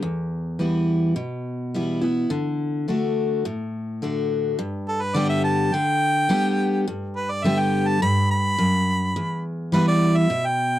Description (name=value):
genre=country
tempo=105 BPM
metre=4/4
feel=straight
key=G major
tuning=A4 = 441 Hz
part: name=picked steel-string acoustic guitar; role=accompaniment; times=0.0-10.8 s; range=E2 to G4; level=-22 LUFS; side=equal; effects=none
part: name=warm harmonica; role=melody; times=4.9-10.8 s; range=A4 to B5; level=-23 LUFS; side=right 1 dB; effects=none
room=moderate booth ambience, RT60 0.2 s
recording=dry, close 1970s-style studio recording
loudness=-20 LUFS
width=side -13 dB against mid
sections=0.0-4.6 A section; 4.6-10.8 B section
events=harmonica solo 4.6-10.8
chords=0.0 Em; 2.3 D; 4.6 G; 9.2 Em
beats=| 0.03 0.60 1.18 1.75 | 2.32 2.89 3.46 4.03 | 4.60 5.17 5.74 6.31 | 6.88 7.45 8.02 8.59 | 9.16 9.73 10.30